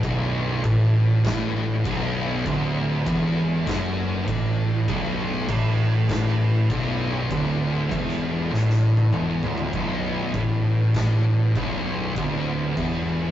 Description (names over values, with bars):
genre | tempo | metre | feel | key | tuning
stoner and doom metal | 99 BPM | 4/4 | straight | B minor | A4 = 440 Hz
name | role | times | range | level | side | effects
tonewheel organ | sustained chords | 0.0-13.3 s | F#3 to D4 | -38 LUFS | equal | none
thick fuzz guitar | riff | 0.0-13.3 s | B1 to A2 | -25 LUFS | left 3 dB | distortion
thick fuzz guitar | riff | 0.0-13.3 s | B1 to A2 | -24 LUFS | right 2 dB | distortion
fuzz picked electric bass | bass | 0.0-13.3 s | B0 to A1 | -31 LUFS | equal | overdrive
oversized low-tuned drum kit | drums | 0.0-12.9 s | crash cymbal, kick drum, snare drum, toms | -31 LUFS | equal | none
room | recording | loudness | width
moderate stone room reverb, RT60 1.0 s | rough rehearsal-room recording, nothing above 7.7 kHz | -20 LUFS | side -12 dB against mid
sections
0.0-9.7 A section; 9.7-13.3 B section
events
drum fill 8.5-9.7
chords
0.0 Bm